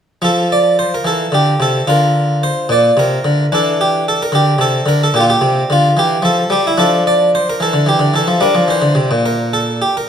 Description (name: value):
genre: classical, baroque-style suite movement for harpsichord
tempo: 73 BPM (dotted quarters)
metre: 12/8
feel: rubato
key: unclear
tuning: A4 = 440 Hz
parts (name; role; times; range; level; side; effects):
- harpsichord; solo; 0.2-10.1 s; Bb2 to D5; -11 LUFS; equal; none
room: wet recital hall reverb, RT60 1.5 s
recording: none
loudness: -11 LUFS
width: side -8 dB against mid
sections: 0.2-10.1 A section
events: none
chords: 0.2 Dm/F; 1.9 Bb/D; 3.5 Em7b5; 6.8 Dm/F; 8.4 Em7b5 (rootless)